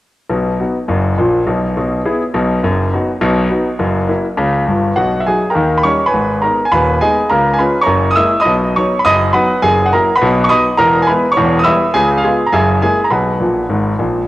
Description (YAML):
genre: jazz, stride piano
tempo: 206 BPM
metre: 4/4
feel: swing 60% on 8ths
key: B major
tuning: A4 = 442 Hz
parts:
  - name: bright concert grand piano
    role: solo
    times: 0.3-14.2 s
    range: D#1 to E6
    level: -11 LUFS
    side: equal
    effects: none
room: moderate lush hall reverb, RT60 2.4 s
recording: home recording on cassette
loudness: -11 LUFS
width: side -16 dB against mid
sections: 0.3-5.0 A section; 5.0-14.3 B section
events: grand piano fill 13.4-14.3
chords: 0.3 B; 1.5 E/B; 2.6 B/F#; 3.8 F#7; 5.0 B; 5.5 D#7; 6.1 G#m; 7.3 C#7; 7.9 F#9; 8.5 B; 9.6 F#9; 10.2 B; 10.8 E; 11.4 Em; 12.0 C#7; 12.5 F#9; 13.1 B5